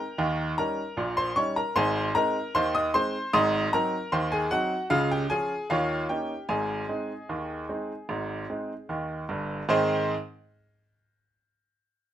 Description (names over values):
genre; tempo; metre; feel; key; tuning
ragtime piano; 76 BPM; 2/4; straight; Ab major; A4 = 443 Hz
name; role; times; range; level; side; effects
clear upright piano; solo; 0.0-10.1 s; G1 to Eb6; -25 LUFS; equal; none
room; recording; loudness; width
moderate studio reverb, RT60 0.5 s; rough home demo mix; -25 LUFS; side -11 dB against mid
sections
0.0-9.7 A section; 9.7-11.3 B section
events
none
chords
0.2 Eb7; 1.8 Ab; 3.3 Ab7; 4.9 Db; 5.7 Eb7; 6.5 Ab